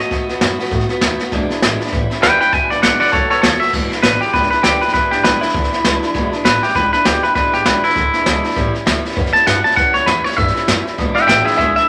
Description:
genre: rockabilly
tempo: 199 BPM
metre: 4/4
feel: swing 60% on 8ths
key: E mixolydian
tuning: A4 = 441 Hz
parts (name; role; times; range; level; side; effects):
- twangy electric guitar; melody; 0.0-11.9 s; E4 to A5; -16 LUFS; equal; spring reverb
- picked acoustic archtop guitar; accompaniment; 0.0-11.9 s; E2 to F#4; -24 LUFS; equal; none
- upright bass; bass; 0.1-11.8 s; E1 to A2; -27 LUFS; equal; none
- jazz brush drum kit; drums; 0.1-11.8 s; crash cymbal, hi-hat, kick drum, snare drum; -20 LUFS; equal; none
room: moderate club reverb, RT60 0.6 s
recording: none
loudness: -15 LUFS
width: mono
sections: 0.0-3.7 A section; 3.7-11.9 B section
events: clean electric guitar solo 3.7-11.9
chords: 0.0 B7; 1.3 E7; 1.9 A7; 2.5 E7; 3.1 B7; 3.7 E7; 8.6 A7; 11.0 E7

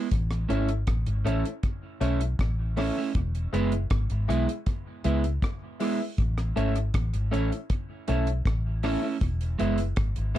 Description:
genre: roots reggae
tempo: 79 BPM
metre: 4/4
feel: straight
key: A major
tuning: A4 = 440 Hz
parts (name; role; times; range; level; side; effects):
- electric guitar at the edge of break-up; accompaniment; 0.0-10.4 s; G#3 to E4; -31 LUFS; right 7 dB; dub echo
- vintage muted fingered electric bass; bass; 0.1-10.4 s; E1 to C#2; -27 LUFS; equal; none
- deep reggae drum kit; drums; 0.1-10.4 s; hi-hat, kick drum, rim click; -29 LUFS; equal; tape echo
- warm upright piano; stabs; 0.5-10.4 s; E4 to E5; -32 LUFS; left 9 dB; none
room: little or no reverb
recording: dark, warm production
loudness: -25 LUFS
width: side -12 dB against mid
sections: 0.0-10.4 A section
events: none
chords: 0.1 A; 3.2 E; 6.2 A; 9.2 E

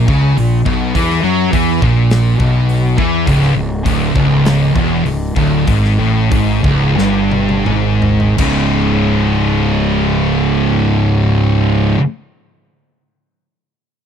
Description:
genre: stoner and doom metal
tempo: 81-103 BPM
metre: 4/4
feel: straight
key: C# dorian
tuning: A4 = 441 Hz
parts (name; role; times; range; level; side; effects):
- thick fuzz guitar; riff; 0.0-12.0 s; C#2 to F#3; -17 LUFS; left 8 dB; distortion
- thick fuzz guitar; riff; 0.0-12.0 s; C#2 to F#3; -16 LUFS; right 6 dB; distortion
- thick fuzz guitar; riff; 0.0-12.0 s; C#2 to E4; -19 LUFS; equal; distortion
- fuzz fingered electric bass; bass; 0.0-11.9 s; C#1 to F#2; -19 LUFS; left 1 dB; overdrive
- big rock drum kit; drums; 0.1-8.6 s; crash cymbal, hi-hat, kick drum, snare drum, toms; -19 LUFS; equal; none
room: small room ambience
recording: dry, close 1970s-style studio recording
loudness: -11 LUFS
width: side -8 dB against mid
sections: 0.0-8.4 A section; 8.4-11.3 B section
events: slowing down 3.3-8.4; drum fill 7.0-8.4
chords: 0.0 A#dim; 3.3 C#m

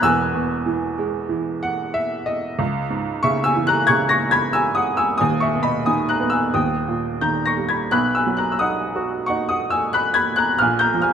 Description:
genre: classical, lyrical solo piano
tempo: 91 BPM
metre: 4/4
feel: rubato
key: unclear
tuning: A4 = 440 Hz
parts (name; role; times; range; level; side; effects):
- clear upright piano; solo; 0.0-11.1 s; D#1 to A#6; -18 LUFS; equal; none
room: moderate recital hall reverb, RT60 1.6 s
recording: minimal, uncompressed stereo recording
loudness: -18 LUFS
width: side -8 dB against mid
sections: 0.0-11.1 A section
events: upright piano fill 1.3-2.6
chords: 0.0 E; 2.6 C#m; 5.2 G#m/D#; 6.5 D#; 7.9 B; 10.6 A#7(no3)

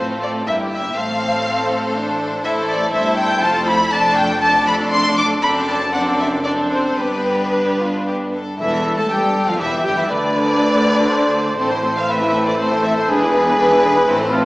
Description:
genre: quick classical-period movement for symphony orchestra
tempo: 120 BPM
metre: 3/4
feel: rubato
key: unclear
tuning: A4 = 439 Hz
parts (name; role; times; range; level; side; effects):
- warm studio violin section; melody; 0.0-14.4 s; B4 to D6; -19 LUFS; left 1 dB; none
- rich studio violin section; second line; 0.0-14.4 s; C4 to D5; -23 LUFS; left 1 dB; none
- rich studio viola section; accompaniment; 0.0-14.4 s; D3 to F4; -23 LUFS; equal; none
- rich studio cello section; bass; 0.0-14.4 s; D2 to A2; -27 LUFS; equal; none
- rich studio double bass section; bass; 0.0-14.4 s; E1 to D2; -29 LUFS; right 1 dB; none
- mellow cor anglais; second line; 8.6-14.4 s; E4 to C5; -19 LUFS; equal; none
- dark French horn section; sustained chords; 8.6-14.4 s; D3 to E4; -26 LUFS; equal; none
room: wet recital hall reverb, RT60 1.4 s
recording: recorded in a church or concert hall, small speaker sound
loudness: -15 LUFS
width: side -20 dB against mid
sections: 0.0-8.6 A section; 8.6-14.4 B section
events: none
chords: 0.5 Edim/G; 1.0 F/A; 2.4 Am; 3.4 F; 3.9 Dm/F; 5.4 D7/F#; 7.0 G; 8.6 Emadd11; 10.1 Bm/D; 11.6 Am; 13.1 E7

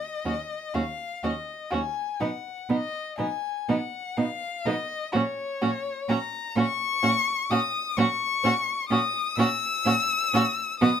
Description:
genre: classical, slow romantic movement for string quartet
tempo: 42 BPM (dotted quarters)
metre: 6/8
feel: rubato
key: F# major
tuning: A4 = 439 Hz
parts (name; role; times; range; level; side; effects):
- warm violin; melody; 0.0-11.0 s; C#5 to E6; -27 LUFS; left 6 dB; none
- rich violin; second line; 0.3-10.9 s; D#4 to F#4; -29 LUFS; right 1 dB; none
- warm viola; accompaniment; 0.3-10.9 s; B3 to C#4; -29 LUFS; right 4 dB; none
- rich cello; bass; 0.3-10.9 s; D#2 to B2; -26 LUFS; right 3 dB; none
room: light reverb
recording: none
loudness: -24 LUFS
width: side -8 dB against mid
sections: 0.0-11.0 A section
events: none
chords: 0.0 D#7(no3); 2.2 B; 5.1 F#/A# (rootless)

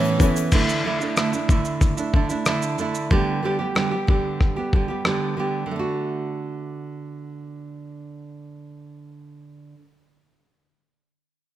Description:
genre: acoustic pop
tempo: 93 BPM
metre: 4/4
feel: straight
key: D major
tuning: A4 = 440 Hz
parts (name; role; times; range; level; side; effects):
- nylon-string guitar; accompaniment; 0.0-9.8 s; A2 to G4; -24 LUFS; right 3 dB; none
- warm upright piano; accompaniment; 0.0-0.5 s; B3 to C#5; -30 LUFS; left 9 dB; none
- egg shaker; percussion; 0.0-0.5 s; none; -38 LUFS; left 10 dB; none
- dusty soul sampler-style drum kit; drums; 0.2-5.2 s; crash cymbal, kick drum, rim click, shaker; -21 LUFS; left 1 dB; overdrive
room: light reverb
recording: none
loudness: -20 LUFS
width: side -13 dB against mid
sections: 0.5-5.7 A section; 5.7-8.3 B section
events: none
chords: 0.0 Aadd9; 0.5 Dsus2; 3.1 G/D; 5.7 D

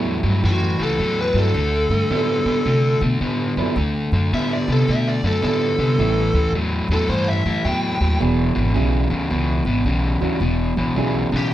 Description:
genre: blues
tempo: 108 BPM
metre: 4/4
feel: swing 64% on 8ths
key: A mixolydian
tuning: A4 = 439 Hz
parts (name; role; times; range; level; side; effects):
- warm upright piano; accompaniment; 0.0-11.3 s; F#3 to A4; -27 LUFS; right 7 dB; none
- overdriven semi-hollow guitar; riff; 0.0-11.5 s; E2 to B3; -22 LUFS; left 1 dB; none
- upright bass; bass; 0.0-11.5 s; E1 to C3; -21 LUFS; equal; none
- biting lead guitar; melody; 0.5-11.5 s; F#4 to G5; -22 LUFS; equal; overdrive
room: light reverb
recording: band playing live in one room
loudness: -17 LUFS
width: side -13 dB against mid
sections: 0.0-11.5 A section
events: lead electric guitar solo 0.0-11.5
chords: 0.0 A7; 1.6 D7; 6.0 A7; 8.2 E7

